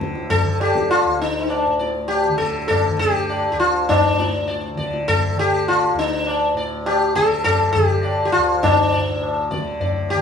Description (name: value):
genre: indian classical, Hindustani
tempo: 101 BPM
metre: 4/4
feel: straight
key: unclear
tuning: A4 = 440 Hz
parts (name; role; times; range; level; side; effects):
- tanpura; drone; 0.0-10.2 s; D2 to D3; -28 LUFS; equal; none
- tabla; percussion; 0.0-10.2 s; none; -21 LUFS; left 1 dB; none
- sitar; melody; 0.3-10.2 s; D4 to D5; -19 LUFS; left 1 dB; none
room: moderate studio reverb, RT60 0.6 s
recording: studio ambience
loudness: -17 LUFS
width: side -7 dB against mid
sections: 0.0-10.2 A section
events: none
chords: none